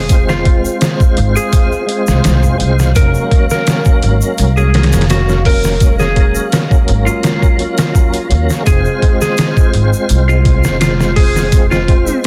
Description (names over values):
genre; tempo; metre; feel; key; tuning
trip hop; 84 BPM; 4/4; straight; F phrygian; A4 = 439 Hz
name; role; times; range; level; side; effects
electric slide guitar; melody; 0.0-12.2 s; F4 to Bb4; -22 LUFS; equal; vintage 12-bit sampler grit, tape echo
tonewheel organ; accompaniment; 0.0-12.3 s; Gb3 to C5; -21 LUFS; equal; overdrive, chorus vibrato, slow rotary speaker, tremolo, tape echo
warbly tape-like pad; sustained chords; 0.0-12.3 s; Ab3 to F5; -28 LUFS; equal; chorus, built-in reverb
upright bass; bass; 0.0-12.0 s; F1 to Eb2; -16 LUFS; equal; none
trip hop sampler-style drum kit; drums; 0.1-12.3 s; hi-hat, kick drum, snare drum; -14 LUFS; equal; small room ambience
egg shaker; percussion; 0.1-12.3 s; none; -31 LUFS; equal; none
room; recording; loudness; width
little or no reverb; dense, heavily limited modern master; -12 LUFS; mono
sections
0.0-12.3 A section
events
none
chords
0.0 Fm; 3.0 Gb/F; 8.7 Fm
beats
| 0.10 0.81 1.53 2.24 | 2.96 3.67 4.38 5.10 | 5.81 6.53 7.24 7.96 | 8.67 9.38 10.10 10.81 | 11.53 12.24